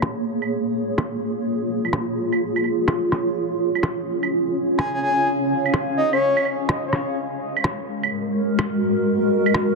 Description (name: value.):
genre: future garage.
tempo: 126 BPM.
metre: 4/4.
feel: swing 66% on 16ths.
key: Bb minor.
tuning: A4 = 439 Hz.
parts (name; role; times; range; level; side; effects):
granular cloud pad; sustained chords; 0.0-9.8 s; Ab3 to F5; -21 LUFS; equal; built-in reverb.
electronic rim click and claves; drums; 0.0-9.7 s; none; -25 LUFS; right 1 dB; low-pass filter on perc, studio reverb, soft clipping on snare, low-pass filter on snare.
breathy flute-like synth lead; melody; 4.8-6.4 s; Db5 to Ab5; -23 LUFS; left 1 dB; chorus, dub echo.
room: moderate huge ambient reverb, RT60 4.1 s.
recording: dense, heavily limited modern master.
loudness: -20 LUFS.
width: side -3 dB against mid.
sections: 0.0-9.8 A section.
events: filter sweep on ambient pad 0.0-9.8.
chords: 0.0 Bbm7; 7.2 Ab9sus4.